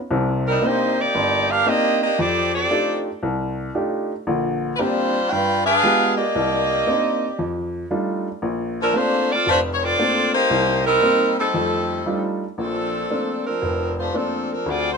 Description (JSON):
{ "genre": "jazz", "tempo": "115 BPM", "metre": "4/4", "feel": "swing 67% on 8ths", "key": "Bb major", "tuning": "A4 = 439 Hz", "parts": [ { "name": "warm upright piano", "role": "accompaniment", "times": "0.1-15.0 s", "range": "F1 to G4", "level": "-23 LUFS", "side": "equal", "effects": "none" }, { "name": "warm saxophone section", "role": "melody", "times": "0.5-15.0 s", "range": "F3 to G5", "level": "-19 LUFS", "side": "equal", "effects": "none" } ], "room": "moderate large studio reverb, RT60 1.2 s", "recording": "minimal, uncompressed stereo recording", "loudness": "-18 LUFS", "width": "side -5 dB against mid", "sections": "0.0-12.6 A section; 12.6-15.0 B section", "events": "none", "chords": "0.1 Cm9; 2.2 F13; 4.3 Bb69; 5.3 G7b9; 6.3 Cm9; 7.4 F13; 8.4 Bbmaj9; 10.5 Cm7; 11.5 F13; 12.6 Bbmaj9" }